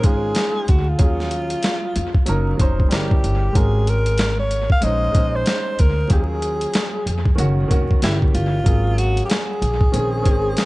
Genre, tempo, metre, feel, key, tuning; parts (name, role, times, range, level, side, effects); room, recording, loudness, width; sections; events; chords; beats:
hip hop, jazz-hop; 94 BPM; 4/4; swing 60% on 16ths; Bb minor; A4 = 441 Hz
breathy alto saxophone; melody; 0.0-10.7 s; E4 to F5; -24 LUFS; equal; analog delay
warm upright piano; accompaniment; 0.0-10.7 s; Eb3 to C5; -26 LUFS; right 1 dB; analog delay
upright bass; bass; 0.0-10.5 s; F1 to F2; -21 LUFS; equal
boom bap sampler-style drum kit; drums; 0.0-10.7 s; hi-hat, kick drum, snare drum; -19 LUFS; equal
little or no reverb; echo-heavy mix, vinyl crackle, nothing above 10.4 kHz; -16 LUFS; side -20 dB against mid
0.0-10.7 A section
0.0 Bbm11 (rootless); 1.0 Ebm11; 2.3 Gb6; 2.9 Gdim7; 3.5 Ab9sus4; 4.8 Bbm11; 6.1 Ebm11; 7.4 Gb6; 8.0 Gdim7; 8.7 Ab9sus4; 9.9 Bbm11
0.36 | 0.99 1.63 2.27 2.91 | 3.55 4.19 4.83 5.46 | 6.10 6.74 7.38 8.02 | 8.65 9.29 9.93 10.57